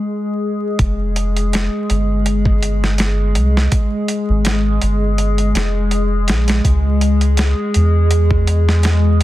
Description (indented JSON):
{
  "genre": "trip hop",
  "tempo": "82 BPM",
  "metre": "4/4",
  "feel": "swing 54% on 16ths",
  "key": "F harmonic minor",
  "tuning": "A4 = 440 Hz",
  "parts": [
    { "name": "warbly tape-like pad", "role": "sustained chords", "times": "0.0-9.2 s", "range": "Ab3 to Ab4", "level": "-20 LUFS", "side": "left 2 dB", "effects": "chorus, built-in reverb, phaser" },
    { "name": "soft dub sub bass", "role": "bass", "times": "0.8-9.2 s", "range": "F1 to E2", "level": "-15 LUFS", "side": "equal", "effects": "none" },
    { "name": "dusty soul sampler-style drum kit", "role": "drums", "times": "0.8-9.2 s", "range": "hi-hat, kick drum, snare drum", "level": "-19 LUFS", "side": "equal", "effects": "studio reverb" }
  ],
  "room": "little or no reverb",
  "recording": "dense, heavily limited modern master, vinyl crackle",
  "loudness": "-14 LUFS",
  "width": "side -15 dB against mid",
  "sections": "0.8-9.2 A section",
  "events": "break 0.0-0.8",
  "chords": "0.0 N.C.; 0.8 Fmadd9; 6.6 Db5"
}